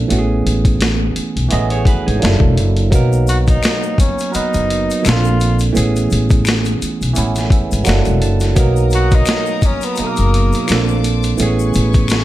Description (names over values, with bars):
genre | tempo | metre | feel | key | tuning
R&B, neo-soul | 85 BPM | 4/4 | swing 55% on 16ths | B major | A4 = 440 Hz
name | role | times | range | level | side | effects
barky tine electric piano | accompaniment | 0.0-12.2 s | B2 to A5 | -19 LUFS | right 4 dB | overdrive, phaser
upright bass | bass | 0.0-12.2 s | E1 to B1 | -16 LUFS | left 1 dB | none
boom bap sampler-style drum kit | drums | 0.1-12.2 s | hi-hat, kick drum, snare drum | -17 LUFS | left 1 dB | none
electric guitar through a small old amp | second line | 1.5-2.4 s | D#4 to D#5 | -24 LUFS | right 3 dB | none
egg shaker and finger snaps | percussion | 2.9-12.2 s | none | -28 LUFS | left 9 dB | none
breathy tenor saxophone | melody | 3.3-11.0 s | A#3 to F#4 | -20 LUFS | left 2 dB | slapback echo
warm studio string section | sustained chords | 8.6-12.2 s | A#4 to D#6 | -28 LUFS | left 5 dB | none
room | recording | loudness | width
little or no reverb | none | -12 LUFS | side -14 dB against mid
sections
0.0-8.6 A section; 8.6-12.2 A section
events
tine electric piano fill 7.2-8.6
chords
0.1 Amaj9; 2.2 F#7alt; 2.9 Bmaj7; 5.0 A#maj9; 5.7 Amaj9; 7.9 F#7alt; 8.6 Bmaj7; 10.7 A#maj9; 11.4 Amaj9